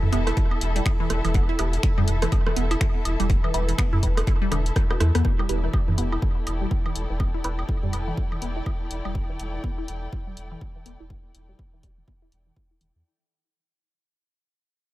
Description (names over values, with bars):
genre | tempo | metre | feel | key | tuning
minimal techno | 123 BPM | 4/4 | swing 60% on 16ths | E minor | A4 = 437 Hz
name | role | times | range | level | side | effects
resonant blip pluck | riff | 0.0-12.9 s | B2 to E4 | -32 LUFS | equal | phaser, sidechain pumping, dub echo
organic electronic drum kit | percussion | 0.0-9.1 s | rim click, toms, woodblock | -28 LUFS | right 1 dB | tape echo
muted studio string section | texture | 0.0-13.1 s | E4 to A5 | -34 LUFS | left 2 dB | sidechain pumping
saturated sub bass | bass | 0.1-13.0 s | E1 to E2 | -26 LUFS | equal | sidechain pumping
punchy analog drum machine | drums | 0.1-12.9 s | finger snaps, hi-hat, rim click | -34 LUFS | left 1 dB | tape echo
electronic kick drum | drums | 0.4-12.7 s | none | -24 LUFS | equal | none
filtered dub chord stab | stabs | 1.6-7.6 s | E4 to B4 | -35 LUFS | right 2 dB | phaser, analog chorus, tape echo
room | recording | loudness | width
digital ambience | echo-heavy mix | -22 LUFS | side -16 dB against mid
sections
0.0-5.2 A section; 5.2-13.1 B section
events
drop 0.0-5.2; drum fill 4.5-5.2; fade-out 5.2-13.1; filter sweep on synth arpeggio sound 5.2-13.1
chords
0.0 E5; 5.2 Em